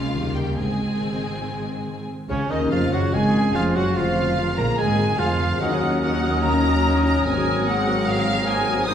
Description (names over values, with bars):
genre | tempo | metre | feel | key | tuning
classical | 146 BPM | 4/4 | rubato | Db major | A4 = 441 Hz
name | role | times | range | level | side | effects
warm symphonic violin section | melody | 0.0-8.9 s | Db5 to Eb6 | -29 LUFS | left 1 dB | none
warm symphonic violin section | second line | 0.0-8.9 s | F4 to Eb6 | -31 LUFS | left 1 dB | none
rich symphonic viola section | accompaniment | 0.0-8.9 s | Db3 to Ab4 | -29 LUFS | equal | none
concert harp | arpeggios | 0.0-8.9 s | Ab2 to Bb5 | -27 LUFS | left 4 dB | none
rich symphonic cello section | bass | 0.0-8.9 s | Db2 to Eb3 | -28 LUFS | right 2 dB | none
warm studio double bass section | bass | 0.0-8.9 s | F1 to Eb2 | -27 LUFS | right 2 dB | none
bright clarinet | second line | 2.3-8.9 s | C4 to Bb4 | -32 LUFS | equal | none
large flute ensemble | second line | 2.3-8.9 s | Db5 to Eb6 | -30 LUFS | right 3 dB | none
warm cor anglais | second line | 2.3-8.9 s | Db4 to C5 | -29 LUFS | right 2 dB | none
dark bassoon | accompaniment | 2.3-8.9 s | Db3 to Bb3 | -30 LUFS | equal | none
dark French horn section | sustained chords | 2.3-8.9 s | Db3 to Db4 | -27 LUFS | left 4 dB | none
room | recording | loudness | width
wet recital hall reverb, RT60 1.7 s | heard from further back in the room | -19 LUFS | side -9 dB against mid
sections
0.0-2.3 A section; 2.3-8.9 B section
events
none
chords
0.2 Eb; 0.6 Ab; 2.3 Db; 4.0 Bb7/F; 5.6 Ebm7; 7.3 Ab9